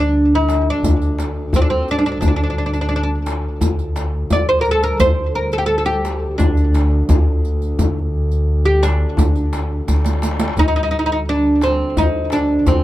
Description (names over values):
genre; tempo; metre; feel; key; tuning
Arabic maqam ensemble; 86 BPM; 4/4; straight; D maqam bayati; A4 = 440 Hz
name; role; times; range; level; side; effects
oud; melody; 0.0-12.8 s; C4 to D5; -18 LUFS; equal; none
upright bass; bass; 0.0-12.8 s; D2; -19 LUFS; equal; none
warm double bass; drone; 0.0-12.8 s; D2; -26 LUFS; left 1 dB; none
darbuka; percussion; 0.5-12.8 s; none; -21 LUFS; left 2 dB; none
riq; percussion; 0.5-12.8 s; none; -26 LUFS; right 3 dB; none
room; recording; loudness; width
light reverb; dark, warm production; -15 LUFS; side -15 dB against mid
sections
0.0-10.6 A section; 10.6-12.8 B section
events
drum fill 9.9-10.6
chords
none